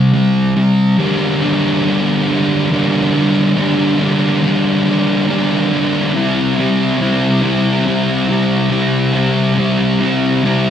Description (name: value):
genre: rock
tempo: 47 BPM (dotted quarters)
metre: 6/8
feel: straight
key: G dorian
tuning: A4 = 440 Hz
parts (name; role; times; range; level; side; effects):
- thick fuzz guitar; solo; 0.0-10.7 s; G2 to E4; -12 LUFS; equal; distortion
room: wet stone room reverb, RT60 1.1 s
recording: band playing live in one room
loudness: -12 LUFS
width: side -9 dB against mid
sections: 0.0-1.0 A section; 1.0-10.7 B section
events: build-up 0.0-1.0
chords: 0.0 C5; 1.0 Gm; 6.1 C